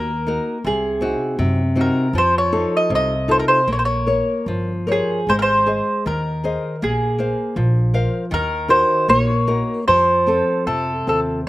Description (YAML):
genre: fado-style ballad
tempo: 74-81 BPM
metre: 2/4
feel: rubato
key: Bb minor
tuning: A4 = 442 Hz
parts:
  - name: mandolin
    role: melody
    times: 0.0-11.2 s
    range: Ab4 to Eb5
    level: -18 LUFS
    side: equal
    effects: slapback echo
  - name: nylon-string guitar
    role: accompaniment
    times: 0.0-11.5 s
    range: C3 to F5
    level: -21 LUFS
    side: left 1 dB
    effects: slapback echo
  - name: upright bass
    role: bass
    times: 0.0-11.4 s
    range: G1 to Gb2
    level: -23 LUFS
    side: equal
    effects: none
room: light reverb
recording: recorded outdoors, with no room sound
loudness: -16 LUFS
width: side -17 dB against mid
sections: 0.0-11.5 A section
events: none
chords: 0.0 Ebm; 0.6 Cdim; 2.1 F7; 3.7 Bbmadd9; 5.3 Ab; 6.8 Bbsus2; 8.3 Ebm; 9.9 F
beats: | 0.64 1.39 | 2.14 2.90 | 3.67 4.47 | 5.27 6.06 | 6.83 7.57 | 8.32 9.09 | 9.87 10.67